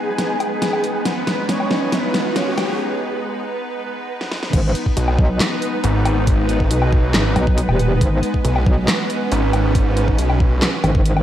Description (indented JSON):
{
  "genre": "heavy wobble dubstep",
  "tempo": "138 BPM",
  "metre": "4/4",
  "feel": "half-time",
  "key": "G# minor",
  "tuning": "A4 = 441 Hz",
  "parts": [
    { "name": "soft supersaw", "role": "melody", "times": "0.0-2.8 s", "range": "B3 to G#5", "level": "-24 LUFS", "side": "right 1 dB", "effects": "analog delay" },
    { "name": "evolving wavetable pad", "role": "sustained chords", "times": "0.0-11.2 s", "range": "G#3 to B4", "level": "-23 LUFS", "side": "right 1 dB", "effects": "ensemble chorus, built-in reverb, sidechain pumping" },
    { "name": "riser", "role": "sound effects", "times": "0.1-2.8 s", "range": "none", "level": "-29 LUFS", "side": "equal", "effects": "none" },
    { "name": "dubstep drum kit", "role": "drums", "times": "0.2-11.2 s", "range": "crash cymbal, handclaps, hi-hat, snare drum, woodblock", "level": "-22 LUFS", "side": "equal", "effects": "none" },
    { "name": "metallic wobble bass", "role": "bass", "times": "4.5-11.2 s", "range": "D#1 to B1", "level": "-17 LUFS", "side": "equal", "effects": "chorus, overdrive" },
    { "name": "electronic kick drum", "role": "drums", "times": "4.5-11.0 s", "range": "none", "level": "-18 LUFS", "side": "equal", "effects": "none" },
    { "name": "snarling distorted saw bass", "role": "bass", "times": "5.0-10.6 s", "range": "G#1 to B1", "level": "-18 LUFS", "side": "equal", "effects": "distortion, overdrive" }
  ],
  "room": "moderate lush hall reverb, RT60 1.7 s",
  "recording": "dreamy mix soaked in reverb, high-pass filter",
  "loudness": "-16 LUFS",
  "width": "side -11 dB against mid",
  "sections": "0.0-4.5 A section; 4.5-11.2 B section",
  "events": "build-up 0.0-4.5; drum fill 0.0-2.8, 4.2-4.5; filter sweep 0.0-4.5; break 2.8-4.5; drop 4.5-11.2",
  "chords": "0.0 G#m"
}